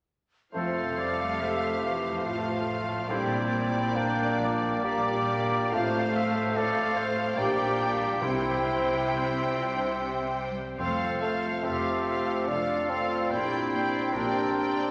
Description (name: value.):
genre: classical, slow romantic movement for symphony orchestra.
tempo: 70 BPM.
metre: 3/4.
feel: uneven beats, rubato.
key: F major.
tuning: A4 = 440 Hz.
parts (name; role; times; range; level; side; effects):
clear symphonic violin section; melody; 0.5-14.9 s; D5 to G5; -37 LUFS; equal; none.
clear oboe; second line; 0.5-14.9 s; A4 to G5; -36 LUFS; equal; none.
concert flute; second line; 0.5-14.9 s; E5 to A5; -42 LUFS; equal; none.
rich symphonic viola section; accompaniment; 0.5-14.9 s; E3 to Bb3; -40 LUFS; equal; none.
warm bassoon; accompaniment; 0.5-14.9 s; A3 to D4; -34 LUFS; equal; none.
mellow French horn section; sustained chords; 0.5-14.9 s; G3 to G4; -37 LUFS; equal; none.
concert harp; arpeggios; 0.5-14.9 s; F2 to D5; -40 LUFS; equal; none.
rich studio double bass section; bass; 0.5-14.9 s; F1 to C2; -42 LUFS; equal; none.
clear clarinet; second line; 0.6-14.9 s; D4 to C5; -35 LUFS; equal; none.
clear symphonic violin section; second line; 0.6-14.9 s; Bb4 to D5; -43 LUFS; equal; none.
bright symphonic cello section; bass; 0.6-14.9 s; F2 to C3; -39 LUFS; equal; none.
timpani; percussion; 8.2-9.5 s; C3; -42 LUFS; equal; none.
room: wet scoring stage reverb, RT60 1.8 s.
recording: lossy compression artefacts.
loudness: -28 LUFS.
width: mono.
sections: 0.5-14.9 A section.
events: none.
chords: 0.5 F; 3.1 Gm/Bb; 5.7 F/A; 7.4 Gm/Bb; 8.2 C; 10.8 F; 13.3 Gm/Bb.